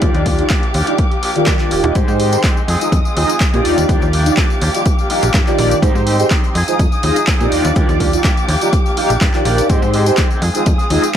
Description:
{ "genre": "filtered disco house", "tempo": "124 BPM", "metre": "4/4", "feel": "straight", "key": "Eb major", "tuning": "A4 = 438 Hz", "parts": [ { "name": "mellow synth brass", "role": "accompaniment", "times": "0.0-11.0 s", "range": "Eb3 to F5", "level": "-17 LUFS", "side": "right 1 dB", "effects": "chorus, phaser, sidechain pumping, low-pass filter" }, { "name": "dark studio violin section", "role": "sustained chords", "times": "0.0-11.2 s", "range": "Ab3 to Eb6", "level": "-23 LUFS", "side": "left 1 dB", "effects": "sidechain pumping, low-pass filter" }, { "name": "electric guitar with an envelope filter", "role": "riff", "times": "0.0-11.2 s", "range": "Eb3 to Ab4", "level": "-23 LUFS", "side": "equal", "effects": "tremolo, sidechain pumping, low-pass filter" }, { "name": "slap-like FM bass", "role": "bass", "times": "0.0-11.0 s", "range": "Eb1 to Bb2", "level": "-18 LUFS", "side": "equal", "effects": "sidechain pumping, low-pass filter" }, { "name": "electronic kick drum", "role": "drums", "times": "0.0-10.8 s", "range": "none", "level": "-16 LUFS", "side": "equal", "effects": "overdrive" }, { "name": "punchy analog drum machine", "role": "drums", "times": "0.0-11.2 s", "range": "handclaps, hi-hat, tambourine", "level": "-22 LUFS", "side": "equal", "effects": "overdrive, sidechain pumping on hats, sidechain pumping on perc" }, { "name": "tube shaker", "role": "percussion", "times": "2.0-11.1 s", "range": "none", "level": "-41 LUFS", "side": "left 5 dB", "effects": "none" } ], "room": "digital ambience", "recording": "none", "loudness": "-12 LUFS", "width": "side -9 dB against mid", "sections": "0.0-11.2 A section", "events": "none", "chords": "0.0 Ebmaj9; 2.0 Abmaj7; 2.7 Fm7; 3.6 Ebmaj9; 5.8 Abmaj7; 6.6 Fm7; 7.5 Ebmaj9; 9.7 Abmaj7; 10.4 Fm7", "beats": "| 0.02 0.50 0.99 1.47 | 1.96 2.44 2.92 3.41 | 3.89 4.37 4.86 5.34 | 5.83 6.31 6.79 7.28 | 7.76 8.24 8.73 9.21 | 9.70 10.18 10.66 11.15" }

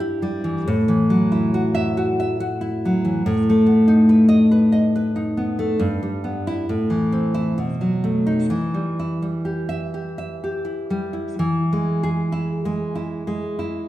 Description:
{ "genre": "romantic piece for solo classical guitar", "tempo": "62-72 BPM", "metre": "3/4", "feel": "rubato", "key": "E minor", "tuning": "A4 = 440 Hz", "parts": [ { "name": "nylon-string guitar", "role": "solo", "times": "0.0-13.9 s", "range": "G2 to E5", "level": "-18 LUFS", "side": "equal", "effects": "none" } ], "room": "wet recital hall reverb, RT60 1.5 s", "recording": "recorded in a church or concert hall", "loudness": "-18 LUFS", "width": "side -14 dB against mid", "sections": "0.0-11.4 A section; 11.4-13.9 B section", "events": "none", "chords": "0.0 Em/G; 0.7 F#m7/A; 3.3 B7/A; 5.8 Em/G; 6.7 Am; 7.6 B7; 8.5 Em; 11.4 E", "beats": "| 0.66 1.53 2.40 | 3.26 4.09 4.94 | 5.80 6.68 7.58 | 8.51 9.47 10.42 | 11.37 12.31 13.26" }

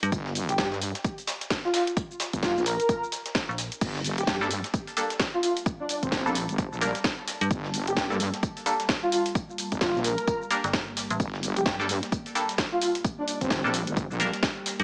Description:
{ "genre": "bass house", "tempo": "130 BPM", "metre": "4/4", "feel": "swing 59% on 16ths", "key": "G minor", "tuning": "A4 = 441 Hz", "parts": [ { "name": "metallic FM bass", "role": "bass", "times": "0.0-0.1, 3.5-3.7, 7.4-7.5, 10.6-11.2, 14.8 s", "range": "G1 to G2", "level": "-30 LUFS", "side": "equal", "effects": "tube saturation, sidechain pumping" }, { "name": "garage drum kit", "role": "drums", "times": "0.0-14.8 s", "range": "crash cymbal, hi-hat, shaker, snare drum", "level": "-33 LUFS", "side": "equal", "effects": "small room ambience" }, { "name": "wobble bass", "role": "bass", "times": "0.1-14.3 s", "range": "G1 to G2", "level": "-33 LUFS", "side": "equal", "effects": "chorus, tube saturation, sidechain pumping" }, { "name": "breakbeat sampler-style drum kit", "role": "drums", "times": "0.1-14.8 s", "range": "hi-hat, snare drum, tambourine", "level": "-40 LUFS", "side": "equal", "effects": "none" }, { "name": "electronic kick drum", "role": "drums", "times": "0.1-14.5 s", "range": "none", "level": "-32 LUFS", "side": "equal", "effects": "overdrive, small room ambience" }, { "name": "breathy flute-like synth lead", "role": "melody", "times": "0.5-13.7 s", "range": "C4 to Bb4", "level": "-32 LUFS", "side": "equal", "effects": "tremolo, ensemble chorus, tape echo" }, { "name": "deep dark ambient pad", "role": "sustained chords", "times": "5.2-14.8 s", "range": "G3 to A5", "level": "-42 LUFS", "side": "equal", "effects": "chorus, built-in reverb, sidechain pumping" }, { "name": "band-passed chord stab", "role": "stabs", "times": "4.4-14.3 s", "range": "G3 to Bb4", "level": "-33 LUFS", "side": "equal", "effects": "phaser, sidechain pumping, tape echo" } ], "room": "moderate digital room reverb, RT60 1.1 s, digital ambience", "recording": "small speaker sound", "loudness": "-28 LUFS", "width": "mono", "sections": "0.0-14.8 A section", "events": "none", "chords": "0.0 Gmadd9", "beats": "| 0.12 0.58 1.04 1.51 | 1.97 2.43 2.89 3.35 | 3.81 4.28 4.74 5.20 | 5.66 6.12 6.58 7.04 | 7.51 7.97 8.43 8.89 | 9.35 9.81 10.28 10.74 | 11.20 11.66 12.12 12.58 | 13.04 13.51 13.97 14.43" }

